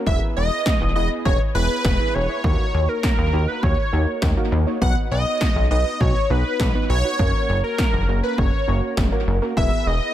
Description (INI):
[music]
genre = synth-pop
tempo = 101 BPM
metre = 4/4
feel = straight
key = B major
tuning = A4 = 439 Hz
[part]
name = warm analog keys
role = accompaniment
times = 0.0-10.1 s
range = A#3 to C#5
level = -27 LUFS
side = right 2 dB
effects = chorus, dub echo
[part]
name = wide unison lead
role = melody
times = 0.1-10.1 s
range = A#4 to F#5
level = -24 LUFS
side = equal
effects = phaser, dub echo
[part]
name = chorused synth bass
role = bass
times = 0.1-10.0 s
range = E1 to D#2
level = -21 LUFS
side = equal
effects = none
[part]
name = 80s electronic pad drums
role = drums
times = 0.1-9.7 s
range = kick drum, snare drum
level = -22 LUFS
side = equal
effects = dub echo
[sound]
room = light reverb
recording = echo-heavy mix, faint mains hum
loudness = -18 LUFS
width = side -12 dB against mid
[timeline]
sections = 0.0-10.1 A section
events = none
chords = 0.1 E; 2.4 D#m; 4.8 B; 7.2 F#; 9.6 E